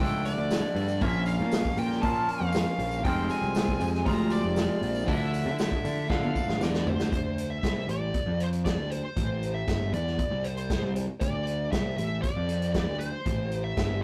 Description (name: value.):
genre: psychedelic rock.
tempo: 118 BPM.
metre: 4/4.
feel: straight.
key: D minor from 7.1 s.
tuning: A4 = 440 Hz.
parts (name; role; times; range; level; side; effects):
fuzz lead guitar; melody; 0.0-14.0 s; C5 to Bb5; -35 LUFS; equal; wah, distortion.
combo organ; sustained chords; 0.0-7.1 s; F3 to F4; -40 LUFS; equal; none.
twangy electric guitar; riff; 0.0-7.1 s; F2 to F4; -35 LUFS; equal; phaser.
fuzz picked electric bass; bass; 0.0-14.0 s; F1 to D3; -32 LUFS; equal; overdrive.
vintage drum kit; drums; 0.0-13.9 s; hi-hat, kick drum, snare drum, toms; -33 LUFS; equal; none.
tambourine; percussion; 0.0-7.1 s; none; -54 LUFS; equal; none.
room: moderate stone room reverb, RT60 0.9 s.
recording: rough rehearsal-room recording, tube saturation.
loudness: -28 LUFS.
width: mono.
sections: 0.0-7.1 A section; 7.1-14.0 B section.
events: drum fill 6.1-7.1.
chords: 0.0 Dmadd9; 1.0 Bbm; 3.0 Fm; 5.1 Dmadd9; 7.1 Dm7; 9.2 Am7; 11.2 Dm7; 13.3 Am7.